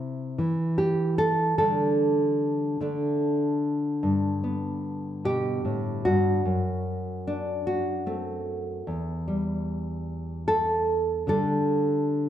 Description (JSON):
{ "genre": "folk, solo fingerstyle acoustic guitar", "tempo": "50 BPM (dotted quarters)", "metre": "6/8", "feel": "rubato", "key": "G major", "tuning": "A4 = 439 Hz", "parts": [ { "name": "nylon-string guitar", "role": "solo", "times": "0.0-12.3 s", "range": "E2 to A4", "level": "-24 LUFS", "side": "equal", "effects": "none" } ], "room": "moderate scoring stage reverb, RT60 1.5 s", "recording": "dark, warm production", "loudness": "-24 LUFS", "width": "side -10 dB against mid", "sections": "0.0-4.0 A section; 4.0-12.3 B section", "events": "none", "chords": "0.0 C; 1.6 Dsus4; 2.8 D5; 4.0 G; 6.5 D7/F#; 8.9 A5/E; 11.3 Dsus4" }